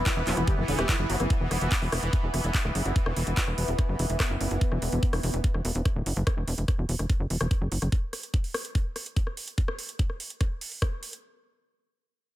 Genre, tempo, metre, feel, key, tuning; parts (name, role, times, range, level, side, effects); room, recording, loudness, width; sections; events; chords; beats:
psychedelic trance; 145 BPM; 4/4; straight; A4 = 439 Hz
wide unison lead; melody; 0.0-1.3 s; E4 to B4; -34 LUFS; right 1 dB; phaser, sidechain pumping, digital delay
bubbling stepped-filter texture; sustained chords; 0.0-4.7 s; E3 to B3; -33 LUFS; equal; chorus, built-in reverb, sidechain pumping
tight sequencer bass; bass; 0.0-7.9 s; D1 to F#1; -28 LUFS; equal
overdriven acid bass; riff; 0.1-1.3 s; D3 to B3; -34 LUFS; left 1 dB; distortion, auto-pan, sidechain pumping, tape echo
electronic kick drum; drums; 0.1-10.9 s; -26 LUFS; equal
techno drum kit; drums; 0.1-11.2 s; handclaps, hi-hat, rim click; -33 LUFS; equal
digital ambience; -25 LUFS; side -14 dB against mid
0.0-11.2 A section
0.0 E5
0.06 0.47 0.89 | 1.30 1.72 2.13 2.54 | 2.96 3.37 3.79 4.20 | 4.61 5.03 5.44 5.85 | 6.27 6.68 7.10 7.51 | 7.92 8.34 8.75 9.16 | 9.58 9.99 10.41 10.82